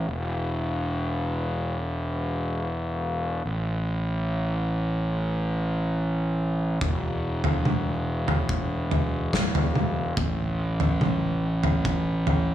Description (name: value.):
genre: post-rock.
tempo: 72 BPM.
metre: 4/4.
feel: straight.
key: unclear.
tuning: A4 = 441 Hz.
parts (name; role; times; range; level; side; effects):
fuzz fingered electric bass; bass; 0.0-12.5 s; E1 to A1; -25 LUFS; equal; overdrive.
loose indie drum kit; drums; 6.8-12.5 s; kick drum, snare drum, toms; -25 LUFS; equal; none.
room: light reverb.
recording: studio reverb.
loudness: -24 LUFS.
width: side -12 dB against mid.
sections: 0.1-12.5 A section.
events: none.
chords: none.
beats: | 0.10 0.94 1.78 2.61 | 3.45 4.29 5.13 5.97 | 6.81 7.65 8.49 9.33 | 10.17 11.01 11.85.